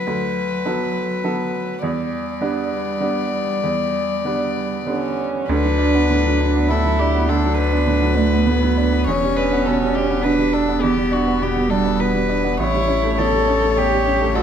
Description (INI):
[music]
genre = neoclassical piano and strings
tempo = 102 BPM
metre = 3/4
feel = rubato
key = D major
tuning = A4 = 440 Hz
[part]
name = rich violin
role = melody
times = 0.0-14.4 s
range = F#4 to D5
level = -23 LUFS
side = left 7 dB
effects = none
[part]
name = dark cello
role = second line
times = 0.0-14.4 s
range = F#3 to A4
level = -22 LUFS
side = right 3 dB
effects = none
[part]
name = bright baby grand piano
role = accompaniment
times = 0.0-14.4 s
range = A1 to A4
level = -22 LUFS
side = right 4 dB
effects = none
[part]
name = warm sub bass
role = bass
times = 5.5-14.4 s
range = E1 to D2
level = -22 LUFS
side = left 2 dB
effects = none
[sound]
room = moderate scoring stage reverb, RT60 1.5 s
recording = none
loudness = -17 LUFS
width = side -8 dB against mid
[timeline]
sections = 0.0-5.5 A section; 5.5-14.4 B section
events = none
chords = 0.0 D6; 1.8 Em7; 5.5 D6; 9.1 Em7; 12.6 A7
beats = | 0.08 0.67 1.25 | 1.83 2.42 3.02 | 3.63 4.24 4.87 | 5.49 6.09 6.70 | 7.29 7.88 8.47 | 9.07 9.66 10.24 | 10.82 11.41 12.00 | 12.59 13.17 13.76 | 14.35